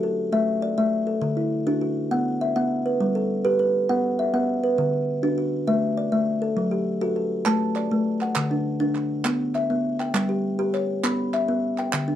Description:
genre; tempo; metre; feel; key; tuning
southern african traditional, mbira-style interlocking cycle; 134 BPM (dotted quarters); 12/8; straight; unclear; A4 = 440 Hz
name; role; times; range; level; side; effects
kalimba; arpeggios; 0.0-12.2 s; D3 to B5; -21 LUFS; equal; none
group handclap; percussion; 7.5-12.1 s; none; -29 LUFS; right 5 dB; none
room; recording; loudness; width
moderate studio ambience, RT60 0.5 s; dark, warm production; -21 LUFS; side -11 dB against mid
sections
0.0-7.5 A section; 7.5-12.2 A section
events
none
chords
0.3 A5; 1.2 D; 2.1 B5; 3.0 G; 3.9 B5; 4.8 D; 5.7 A5; 6.6 F#m; 7.5 Asus4; 8.4 D; 9.3 Bsus4; 10.1 N.C.; 11.0 Bsus4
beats
| 0.32 0.77 1.22 1.66 | 2.11 2.55 3.00 3.45 | 3.89 4.34 4.79 5.23 | 5.68 6.13 6.57 7.02 | 7.47 7.91 8.36 8.81 | 9.25 9.70 10.14 10.59 | 11.04 11.48 11.93

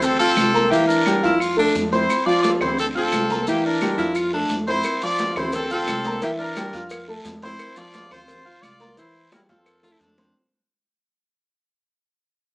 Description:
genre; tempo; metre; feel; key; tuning
latin, salsa; 174 BPM; 4/4; straight; F major; A4 = 440 Hz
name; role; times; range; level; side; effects
bright horn section; melody; 0.0-10.2 s; Bb3 to D5; -22 LUFS; equal; none
dark grand piano; accompaniment; 0.0-10.3 s; E3 to F6; -22 LUFS; equal; none
upright bass; bass; 0.0-10.3 s; C2 to F2; -34 LUFS; equal; none
congas; percussion; 0.0-10.4 s; none; -28 LUFS; equal; none
guiro; percussion; 0.0-10.4 s; none; -35 LUFS; right 1 dB; none
maracas; percussion; 0.0-10.4 s; none; -38 LUFS; left 1 dB; none
claves; percussion; 0.4-9.8 s; none; -32 LUFS; equal; none
breathy baritone saxophone; second line; 1.2-1.8, 4.0-4.6, 9.8-10.3 s; D4 to F4; -22 LUFS; equal; none
cowbell and bongos; percussion; 4.8-10.4 s; none; -36 LUFS; equal; none
room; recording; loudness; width
moderate studio reverb, RT60 0.9 s; small speaker sound; -18 LUFS; side -28 dB against mid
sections
0.0-10.4 A section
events
fade-out 0.0-10.4; drum fill 9.3-10.4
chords
0.0 Dm7; 0.7 Gm6; 1.4 F6; 2.8 Dm7; 3.5 Gm6; 4.2 F6; 5.5 Dm7; 6.2 Gm6; 6.9 F6; 8.3 Dm7; 9.0 C; 9.7 F6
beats
0.02 0.37 | 0.71 1.06 1.40 1.75 | 2.09 2.44 2.78 3.13 | 3.47 3.81 4.16 4.50 | 4.85 5.19 5.54 5.88 | 6.22 6.57 6.91 7.25 | 7.60 7.94 8.29 8.63 | 8.97 9.32 9.66 10.01

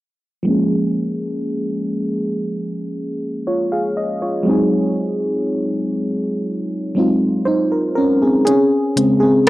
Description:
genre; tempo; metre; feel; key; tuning
contemporary R&B; 60 BPM; 4/4; straight; Bb minor; A4 = 440 Hz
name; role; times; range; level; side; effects
mellow FM electric piano; accompaniment; 0.4-9.5 s; Db3 to F5; -16 LUFS; equal; chorus, low-pass filter, cassette tape
trap drum kit; drums; 8.5-9.5 s; hi-hat, rim click; -14 LUFS; equal; cassette tape
room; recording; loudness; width
moderate spring reverb, RT60 2.9 s; home recording on cassette; -16 LUFS; side -17 dB against mid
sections
0.5-8.5 A section; 8.5-9.5 B section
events
filter sweep on FM electric piano 0.5-8.5; kick muted 8.5-9.5; FM electric piano solo 8.5-9.5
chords
0.5 Bbm7; 4.5 Ab7; 8.5 Dbmaj7(no3)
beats
| 0.47 1.47 2.47 3.47 | 4.47 5.47 6.47 7.47 | 8.47 9.47

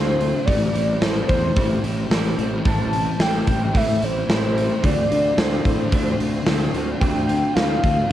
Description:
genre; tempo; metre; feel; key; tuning
rock, shoegaze and dream pop; 110 BPM; 4/4; straight; D minor; A4 = 440 Hz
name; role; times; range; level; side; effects
warm velvety synth lead; melody; 0.0-8.1 s; C5 to A5; -24 LUFS; equal; chorus, cassette tape, tape echo
clean electric guitar; riff; 0.0-8.1 s; A2 to F4; -29 LUFS; right 8 dB; reverse reverb, cassette tape
thick fuzz guitar; riff; 0.0-8.1 s; A2 to D4; -25 LUFS; left 6 dB; distortion, ensemble chorus, cassette tape
fuzz fingered electric bass; bass; 0.0-8.0 s; A1 to A2; -24 LUFS; equal; overdrive
big rock drum kit; drums; 0.2-8.0 s; hi-hat, kick drum, snare drum; -22 LUFS; equal; none
room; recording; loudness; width
light reverb; home recording on cassette; -18 LUFS; side -12 dB against mid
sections
0.0-8.1 A section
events
none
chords
0.5 Am7; 4.8 Dm7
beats
| 0.47 1.02 1.56 2.11 | 2.66 3.20 3.75 4.29 | 4.84 5.38 5.93 6.47 | 7.01 7.56 8.10

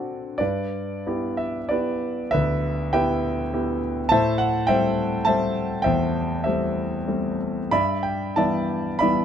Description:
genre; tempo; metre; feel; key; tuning
classical, lyrical solo piano; 87-105 BPM; 3/4; rubato; unclear; A4 = 441 Hz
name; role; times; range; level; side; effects
warm concert grand piano; solo; 0.0-9.2 s; D2 to B5; -21 LUFS; equal; none
room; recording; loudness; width
light reverb; close, detailed microphones; -21 LUFS; side -8 dB against mid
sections
0.4-9.2 A section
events
none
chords
0.4 G6; 4.1 Am7; 7.7 G6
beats
| 0.40 1.06 1.71 | 2.33 2.94 3.53 | 4.11 4.68 5.26 | 5.84 6.45 7.08 | 7.72 8.36 9.00

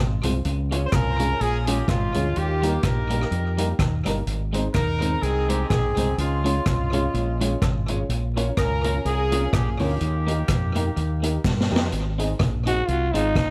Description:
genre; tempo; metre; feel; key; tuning
ska; 126 BPM; 4/4; swing 56% on 8ths; Ab major; A4 = 440 Hz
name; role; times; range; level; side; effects
fingered electric bass; bass; 0.0-13.5 s; G1 to G2; -27 LUFS; equal; none
electric guitar at the edge of break-up; accompaniment; 0.2-13.2 s; G3 to Ab4; -34 LUFS; equal; tape echo
dark upright piano; stabs; 0.2-13.3 s; Bb3 to Eb5; -33 LUFS; equal; none
street-band drum kit; drums; 0.2-13.5 s; hi-hat, kick drum, rim click, snare drum; -28 LUFS; equal; tape echo
warm horn section; melody; 0.9-11.4 s; Ab3 to C5; -30 LUFS; equal; tape echo
group handclap; percussion; 0.9-11.6 s; none; -40 LUFS; equal; none
growling trombone; melody; 12.7-13.5 s; Eb4 to Gb4; -25 LUFS; equal; tape echo
room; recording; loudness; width
light reverb; vinyl crackle; -23 LUFS; mono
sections
0.0-11.9 A section; 11.9-13.5 B section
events
drum fill 11.4-11.9; trombone solo 11.9-13.5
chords
0.4 Db; 2.4 Eb; 4.3 Ab; 6.2 Db; 8.1 Bbm; 10.0 Eb; 11.9 Ab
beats
| 0.45 0.93 1.40 1.88 | 2.36 2.84 3.31 3.79 | 4.27 4.75 5.23 5.71 | 6.18 6.66 7.14 7.62 | 8.10 8.57 9.05 9.53 | 10.01 10.49 10.97 11.44 | 11.92 12.40 12.88 13.36

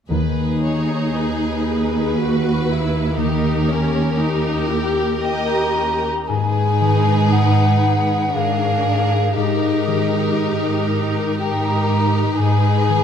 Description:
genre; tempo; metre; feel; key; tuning
classical, slow romantic movement for symphony orchestra; 59 BPM; 3/4; uneven beats, rubato; G# minor; A4 = 440 Hz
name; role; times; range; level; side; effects
rich chamber violin section; melody; 0.1-13.0 s; A#4 to D#5; -28 LUFS; left 3 dB; none
rich studio violin section; second line; 0.1-13.0 s; G4 to B4; -27 LUFS; left 4 dB; none
rich studio viola section; accompaniment; 0.1-13.0 s; C#4 to G4; -25 LUFS; right 1 dB; none
concert harp; arpeggios; 0.1-13.0 s; G#2 to B4; -23 LUFS; left 7 dB; none
clear studio cello section; bass; 0.1-13.0 s; D#2 to G#2; -20 LUFS; right 3 dB; none
rich studio double bass section; bass; 0.1-1.1 s; D#2; -24 LUFS; right 4 dB; none
mellow hollow silver concert flute; second line; 5.2-13.0 s; D#5 to A#5; -22 LUFS; left 1 dB; none
room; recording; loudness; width
wet concert hall reverb, RT60 1.7 s; none; -16 LUFS; side -8 dB against mid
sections
0.1-6.3 A section; 6.3-13.0 B section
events
none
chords
0.1 G#m/D#; 3.2 D#7b9; 6.3 G#m; 8.4 A#7/G#; 9.4 D#/G#; 12.4 G#m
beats
| 0.10 1.17 2.19 | 3.18 4.17 5.20 | 6.29 7.33 8.36 | 9.37 10.38 11.40 | 12.39

